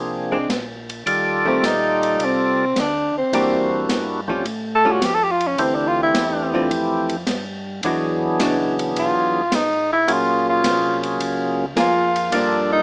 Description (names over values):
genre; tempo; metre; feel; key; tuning
soul jazz organ trio; 106 BPM; 4/4; swing 69% on 8ths; unclear; A4 = 440 Hz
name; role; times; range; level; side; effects
percussive tonewheel organ; melody; 0.0-12.8 s; E3 to D5; -24 LUFS; equal; slow rotary speaker
tonewheel organ; bass; 0.0-12.8 s; E1 to A2; -35 LUFS; equal; slow rotary speaker
archtop guitar, miked and amplified; accompaniment; 0.3-12.8 s; D3 to Ab4; -25 LUFS; equal; none
open jazz drum kit; drums; 0.5-12.5 s; hi-hat, kick drum, ride cymbal, snare drum; -30 LUFS; equal; none
warm tenor saxophone; melody; 1.5-12.8 s; C4 to A4; -21 LUFS; equal; none
room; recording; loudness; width
moderate studio ambience, RT60 0.5 s; small speaker sound; -20 LUFS; mono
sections
0.0-12.8 A section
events
tenor saxophone solo 0.0-12.8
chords
0.0 Bb9; 1.1 Ebmaj9#11; 3.3 Em7b5; 4.4 Aaug7; 5.6 Dm11; 7.8 E9; 10.1 Gbmaj9; 12.3 Gm7